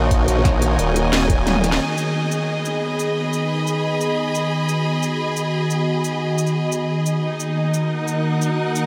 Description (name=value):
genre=dark technical drum and bass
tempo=177 BPM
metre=4/4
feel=straight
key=G# minor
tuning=A4 = 440 Hz
part: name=sweeping resonant pad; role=sustained chords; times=0.0-8.9 s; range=D#3 to D#5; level=-23 LUFS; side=equal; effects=chorus, sidechain pumping
part: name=formant-sweep wobble bass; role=bass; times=0.0-1.8 s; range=D#1 to A#1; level=-21 LUFS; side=equal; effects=chorus, tube saturation
part: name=clear studio string section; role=texture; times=0.0-8.9 s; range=D#4 to B5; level=-27 LUFS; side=equal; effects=sidechain pumping
part: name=drum and bass drum kit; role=drums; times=0.1-8.8 s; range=hi-hat, shaker, snare drum, toms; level=-28 LUFS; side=equal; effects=none
part: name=electronic kick drum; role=drums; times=0.1-1.4 s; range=none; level=-20 LUFS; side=equal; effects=none
room=wet huge ambient reverb, RT60 7.7 s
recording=dreamy mix soaked in reverb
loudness=-20 LUFS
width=mono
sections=0.0-1.8 A section; 1.8-8.9 B section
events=drum fill 1.5-1.8; band accent 1.7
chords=0.0 D#m; 1.8 G#m; 7.2 D#m